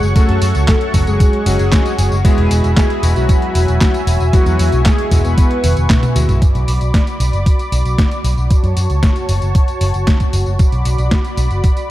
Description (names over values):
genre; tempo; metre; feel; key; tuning
italo disco; 115 BPM; 4/4; straight; B dorian; A4 = 441 Hz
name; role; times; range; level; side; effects
mellow synth brass; melody; 0.0-6.3 s; F#3 to B4; -20 LUFS; equal; chorus, digital delay
warm analog pad; sustained chords; 0.0-11.9 s; F#4 to D6; -23 LUFS; equal; chorus
bright electric grand piano; stabs; 0.0-6.4 s; F#3 to F#4; -25 LUFS; left 4 dB; digital delay
picked electric bass with an envelope filter; bass; 0.0-11.6 s; E1 to F#2; -16 LUFS; equal; tube saturation
detuned 8-bit digital drum machine; drums; 0.0-11.9 s; handclaps, hi-hat, snare drum, tambourine, toms; -21 LUFS; equal; overdrive
electronic kick drum; drums; 0.2-11.7 s; none; -13 LUFS; equal; overdrive
room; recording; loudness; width
digital ambience; dark, warm production; -12 LUFS; side -15 dB against mid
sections
0.0-6.4 A section; 6.4-11.9 B section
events
drum fill 5.6-6.4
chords
0.0 F#m; 2.2 Eadd9; 6.4 Bm; 8.5 F#m; 10.6 Bm